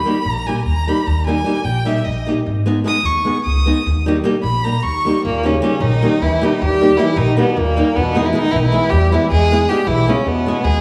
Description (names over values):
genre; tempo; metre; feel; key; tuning
balkan folk, Balkan wedding band; 306 BPM (eighths); 7/8; straight; Eb phrygian dominant; A4 = 438 Hz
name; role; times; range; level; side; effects
rich violin; melody; 0.0-10.8 s; Bb3 to Eb6; -22 LUFS; equal; analog delay
flamenco guitar; accompaniment; 0.1-10.6 s; G3 to Ab4; -22 LUFS; equal; none
upright bass; bass; 0.3-10.8 s; Ab1 to E2; -21 LUFS; equal; none
warm trombone; second line; 5.3-10.8 s; Bb2 to Ab3; -22 LUFS; equal; none
room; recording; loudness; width
wet lush hall reverb, RT60 2.2 s; dreamy mix soaked in reverb, small room ambience; -16 LUFS; mono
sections
0.0-5.2 A section; 5.2-10.8 B section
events
speeding up 0.0-10.8; violin solo 0.0-5.2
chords
0.0 Eb; 2.5 Abm; 3.9 Eb; 8.0 E